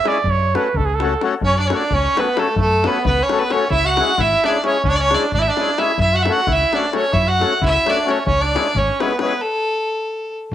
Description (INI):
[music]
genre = balkan folk, Balkan wedding band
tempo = 263 BPM (eighths)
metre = 5/8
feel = straight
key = F# minor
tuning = A4 = 441 Hz
[part]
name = clear trumpet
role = second line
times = 0.0-9.4 s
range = A3 to D5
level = -21 LUFS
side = right 6 dB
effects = cassette tape
[part]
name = accordion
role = accompaniment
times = 0.0-9.3 s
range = G#3 to A4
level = -23 LUFS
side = left 7 dB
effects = cassette tape
[part]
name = davul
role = percussion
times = 0.1-9.3 s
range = none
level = -25 LUFS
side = left 3 dB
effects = none
[part]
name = hollow-body short-scale fingered electric bass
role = bass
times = 0.2-10.5 s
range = F#1 to F#2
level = -21 LUFS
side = equal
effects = none
[part]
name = clear fiddle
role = melody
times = 1.4-10.3 s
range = A4 to F#5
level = -18 LUFS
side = left 1 dB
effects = none
[sound]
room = moderate spring reverb, RT60 1.3 s, small room ambience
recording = home recording on cassette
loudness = -15 LUFS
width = side -11 dB against mid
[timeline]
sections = 0.0-1.4 A section; 1.4-10.5 B section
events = trumpet solo 0.0-1.4; stop 9.4-10.5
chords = 0.3 F#m; 3.7 C#m; 6.0 F#m; 8.3 C#m; 9.4 N.C.